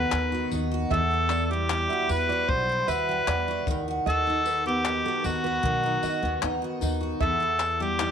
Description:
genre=acoustic pop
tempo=76 BPM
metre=4/4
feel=straight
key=E harmonic minor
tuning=A4 = 440 Hz
part: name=mellow harmonica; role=melody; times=0.0-8.1 s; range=F#4 to C5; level=-26 LUFS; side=equal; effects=none
part: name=picked steel-string acoustic guitar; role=accompaniment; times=0.0-8.1 s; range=E2 to F#4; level=-29 LUFS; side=equal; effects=double-tracked left and right
part: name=upright bass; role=bass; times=0.0-8.1 s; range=B1 to E2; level=-31 LUFS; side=equal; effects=none
part: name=compact cocktail drum kit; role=drums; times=0.1-8.1 s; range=handclaps, kick drum, tambourine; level=-33 LUFS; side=left 4 dB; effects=none
part: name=nylon-string guitar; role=arpeggios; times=0.9-8.0 s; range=A4 to E5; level=-35 LUFS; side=right 13 dB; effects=none
room=light reverb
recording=1960s-style stereo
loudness=-23 LUFS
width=side -8 dB against mid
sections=0.0-8.1 A section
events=none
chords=0.0 B/D#; 0.9 Emadd9; 3.7 B/D#; 7.2 Emadd9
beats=0.13 | 0.92 1.70 2.49 3.28 | 4.06 4.85 5.64 6.42 | 7.21 8.00

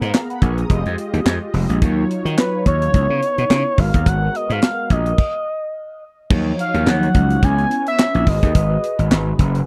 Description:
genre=early-eighties boogie funk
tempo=107 BPM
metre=4/4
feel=swing 56% on 16ths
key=unclear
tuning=A4 = 440 Hz
part: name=mellow synth brass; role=accompaniment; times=0.0-9.7 s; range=F3 to Eb6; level=-27 LUFS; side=equal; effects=chorus, phaser
part: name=gritty slap bass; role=bass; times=0.0-9.6 s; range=F1 to Eb3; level=-21 LUFS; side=equal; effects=overdrive
part: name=tight funk drum kit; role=drums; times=0.0-9.7 s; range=crash cymbal, handclaps, hi-hat, kick drum, snare drum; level=-18 LUFS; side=equal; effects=none
part: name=expressive synth lead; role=melody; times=2.4-9.4 s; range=Cb5 to Ab5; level=-24 LUFS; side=equal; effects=chorus
room=little or no reverb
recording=dry, close 1970s-style studio recording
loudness=-18 LUFS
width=mono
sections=0.0-6.3 A section; 6.3-9.7 B section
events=stop 5.2-6.3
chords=0.0 Abm9; 0.7 Fm9; 1.8 Ebm9; 2.9 Dbm9; 3.8 Abm9; 5.2 N.C.; 6.3 Ebm9; 7.4 Dbm7; 8.3 Abm7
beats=0.14 0.70 1.26 | 1.82 2.38 2.94 3.50 | 4.06 4.62 5.19 5.75 | 6.31 6.87 7.43 7.99 | 8.55 9.11

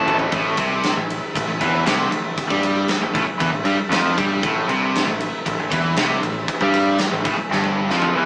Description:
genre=hard rock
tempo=117 BPM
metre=4/4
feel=straight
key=A minor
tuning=A4 = 440 Hz
part: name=overdriven tonewheel organ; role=sustained chords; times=0.0-8.3 s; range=A3 to B4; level=-33 LUFS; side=equal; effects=none
part: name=cranked stack guitar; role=riff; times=0.0-8.3 s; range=G2 to A3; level=-26 LUFS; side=equal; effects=overdrive
part: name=high-gain distorted guitar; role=riff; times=0.0-8.3 s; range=G2 to A3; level=-29 LUFS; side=equal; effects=distortion
part: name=sludgy distorted guitar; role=riff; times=0.0-8.3 s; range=G2 to G3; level=-31 LUFS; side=equal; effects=none
part: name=growling picked electric bass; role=bass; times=0.1-8.3 s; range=G1 to G2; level=-26 LUFS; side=equal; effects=overdrive
part: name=huge arena drum kit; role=drums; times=0.1-8.1 s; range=kick drum, ride cymbal, snare drum, toms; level=-25 LUFS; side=equal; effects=none
room=moderate studio reverb, RT60 0.5 s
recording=band playing live in one room, small speaker sound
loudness=-20 LUFS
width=mono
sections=0.3-8.3 A section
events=drum fill 0.0-0.3, 7.5-8.3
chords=0.3 Am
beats=| 0.31 0.83 1.34 1.86 | 2.37 2.88 3.40 3.91 | 4.42 4.94 5.45 5.97 | 6.48 6.99 7.51 8.02

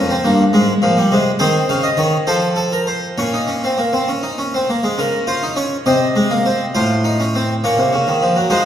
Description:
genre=classical, baroque-style 4-part fugue for harpsichord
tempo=68 BPM (dotted quarters)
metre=6/8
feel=straight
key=Bb minor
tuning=A4 = 440 Hz
part: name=harpsichord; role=solo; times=0.0-8.7 s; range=F2 to F5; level=-14 LUFS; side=equal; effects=none
room=wet recital hall reverb, RT60 1.7 s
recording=recorded in a church or concert hall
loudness=-14 LUFS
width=side -10 dB against mid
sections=0.0-5.0 A section; 5.0-8.7 B section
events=none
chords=0.0 Bbm; 0.5 Ab; 1.4 Dbmaj9; 2.3 F; 3.2 Bbm; 5.0 Bbm/Db; 5.9 Cm7; 6.8 F7/A; 7.6 Bbm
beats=0.53 | 1.40 2.28 | 3.18 4.08 | 4.98 5.87 | 6.75 7.63 | 8.50

